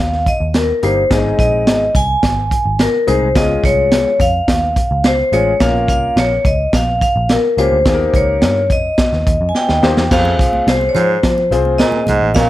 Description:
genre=uptempo 1960s-style soul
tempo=107 BPM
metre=4/4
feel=straight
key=unclear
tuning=A4 = 441 Hz
part: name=vibraphone with medium hard mallets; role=melody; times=0.0-12.5 s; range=Bb4 to Ab5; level=-16 LUFS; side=left 1 dB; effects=none
part: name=vintage muted picked electric bass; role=bass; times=0.0-12.5 s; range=G1 to F3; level=-19 LUFS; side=equal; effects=none
part: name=crunchy breakbeat drum kit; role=drums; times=0.1-12.5 s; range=crash cymbal, hi-hat, kick drum, snare drum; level=-16 LUFS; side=equal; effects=none
part: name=clear upright piano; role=accompaniment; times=0.8-12.5 s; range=G3 to Db5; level=-19 LUFS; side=left 4 dB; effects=tube saturation
part: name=raspy baritone saxophone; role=riff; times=10.1-12.5 s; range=F2 to Bb2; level=-19 LUFS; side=right 5 dB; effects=none
part: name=congas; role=percussion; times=10.1-12.5 s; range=none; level=-26 LUFS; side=right 3 dB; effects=none
room=light reverb, studio reverb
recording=none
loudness=-12 LUFS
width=side -15 dB against mid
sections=0.0-10.1 A section; 10.1-12.5 B section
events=drum fill 9.5-10.1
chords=0.0 Eb; 1.1 Ab; 3.4 Db; 5.6 Bbm; 7.9 Eb; 10.1 Fm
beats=0.54 | 1.11 1.67 2.23 2.80 | 3.36 3.92 4.48 5.05 | 5.61 6.17 6.74 7.30 | 7.86 8.42 8.98 9.55 | 10.11 10.67 11.23 11.80 | 12.36

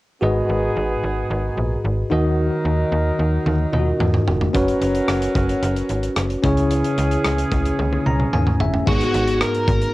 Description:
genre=1980s-style pop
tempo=111 BPM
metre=4/4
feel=straight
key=G# minor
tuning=A4 = 440 Hz
part: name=bell-like tine electric piano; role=accompaniment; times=0.2-9.9 s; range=G#2 to A#5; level=-21 LUFS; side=left 1 dB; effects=medium stereo tremolo, plate reverb
part: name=clear horn section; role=stabs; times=0.2-8.6 s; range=D#3 to A#4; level=-28 LUFS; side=right 2 dB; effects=plate reverb, tape echo
part: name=slap-like FM bass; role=bass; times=0.2-9.9 s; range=E1 to E2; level=-22 LUFS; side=equal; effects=none
part: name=modern studio drum kit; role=drums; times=3.5-9.9 s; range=crash cymbal, hi-hat, kick drum, rim click, toms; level=-23 LUFS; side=equal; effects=cassette tape
part: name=bluesy overdriven lead guitar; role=melody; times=8.9-9.9 s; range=F#4 to A#4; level=-21 LUFS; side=equal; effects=distortion, cassette tape, plate reverb
room=moderate booth ambience, RT60 0.3 s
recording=home recording on cassette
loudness=-17 LUFS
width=side -18 dB against mid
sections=0.2-8.9 A section; 8.9-9.9 B section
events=drum fill 3.5-4.5, 7.8-8.9; tine electric piano fill 7.8-8.9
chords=0.2 G#m7; 2.1 D#m; 4.5 F#sus4; 6.4 C#m; 8.9 G#m7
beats=| 0.22 0.76 1.30 1.84 | 2.38 2.92 3.46 4.01 | 4.55 5.09 5.63 6.17 | 6.71 7.25 7.79 8.33 | 8.87 9.41

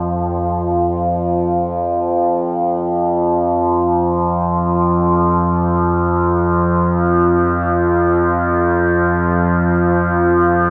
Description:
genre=ambient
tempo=free time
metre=none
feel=none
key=unclear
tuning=A4 = 438 Hz
part: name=overtone-sweeping drone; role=solo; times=0.0-10.7 s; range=F2 to F3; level=-16 LUFS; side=equal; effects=chorus, built-in reverb, tape echo
room=wet plate reverb, RT60 2.5 s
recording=echo-heavy mix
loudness=-16 LUFS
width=mono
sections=0.7-10.7 A section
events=none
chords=none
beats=free time

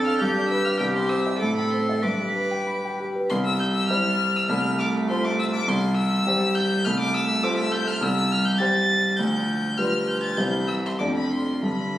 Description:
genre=quick classical-period movement for piano trio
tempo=93-103 BPM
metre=2/4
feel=rubato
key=C major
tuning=A4 = 437 Hz
part: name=warm cello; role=second line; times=0.0-12.0 s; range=D3 to B4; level=-27 LUFS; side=right 2 dB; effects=none
part: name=warm grand piano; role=accompaniment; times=0.0-12.0 s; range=C2 to B5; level=-24 LUFS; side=equal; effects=none
part: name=rich violin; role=melody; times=0.1-12.0 s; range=G5 to A6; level=-26 LUFS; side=left 2 dB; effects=none
room=wet recital hall reverb, RT60 1.5 s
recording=recorded on a phone in the room, studio reverb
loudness=-21 LUFS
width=side -13 dB against mid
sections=0.0-3.3 A section; 3.3-12.0 B section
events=none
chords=0.2 G7; 0.8 C; 1.4 Am; 2.0 G; 3.3 C; 4.5 F/C; 5.7 C; 6.8 F/C; 8.0 C5; 9.2 G7/D; 10.4 C; 11.0 Dm/F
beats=0.20 | 0.80 1.41 | 2.04 2.67 | 3.31 3.90 | 4.50 5.09 | 5.67 6.26 | 6.85 7.43 | 8.02 8.60 | 9.19 9.79 | 10.38 11.00 | 11.63

